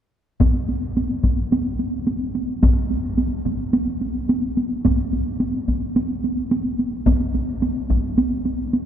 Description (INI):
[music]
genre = japanese traditional, taiko drum ensemble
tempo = 108 BPM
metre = 4/4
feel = straight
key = none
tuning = none
[part]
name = solo taiko drums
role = percussion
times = 0.4-8.9 s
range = none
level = -21 LUFS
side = right 2 dB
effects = none
[part]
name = taiko ensemble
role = percussion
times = 0.4-8.0 s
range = none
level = -23 LUFS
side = left 1 dB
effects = none
[sound]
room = wet cathedral reverb, RT60 6.8 s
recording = recorded in a church or concert hall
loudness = -19 LUFS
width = side -9 dB against mid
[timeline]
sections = 0.4-8.9 A section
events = none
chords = none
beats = | 0.41 0.96 1.52 2.07 | 2.63 3.18 3.74 4.29 | 4.85 5.40 5.96 6.51 | 7.07 7.62 8.18 8.73